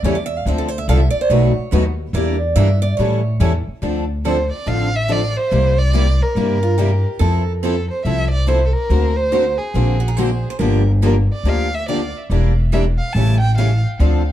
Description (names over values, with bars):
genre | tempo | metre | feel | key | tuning
acoustic string swing (jazz manouche) | 142 BPM | 4/4 | swing 62% on 8ths | D minor | A4 = 440 Hz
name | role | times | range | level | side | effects
picked steel-string acoustic guitar | second line | 0.0-3.4, 6.6-10.9 s | F4 to F5 | -23 LUFS | right 3 dB | none
picked steel-string acoustic guitar | accompaniment | 0.0-14.2 s | B2 to C5 | -24 LUFS | left 6 dB | none
picked steel-string acoustic guitar | accompaniment | 0.0-14.2 s | B2 to C5 | -25 LUFS | right 4 dB | none
upright bass | bass | 0.0-14.3 s | E1 to A2 | -17 LUFS | equal | none
warm violin | melody | 4.3-13.8 s | G#4 to A5 | -22 LUFS | right 1 dB | tape echo
room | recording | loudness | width
light reverb | dark, warm production | -15 LUFS | side -12 dB against mid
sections
0.0-3.8 A section; 3.8-14.3 B section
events
steel-string acoustic guitar solo 0.0-3.8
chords
0.5 Dm7; 1.3 B7; 2.1 Em7b5; 3.0 A7; 3.8 Dm7; 5.5 C9; 7.2 Fmaj7; 8.9 Daug7; 10.6 Gm7; 12.3 Em7b5; 13.1 A7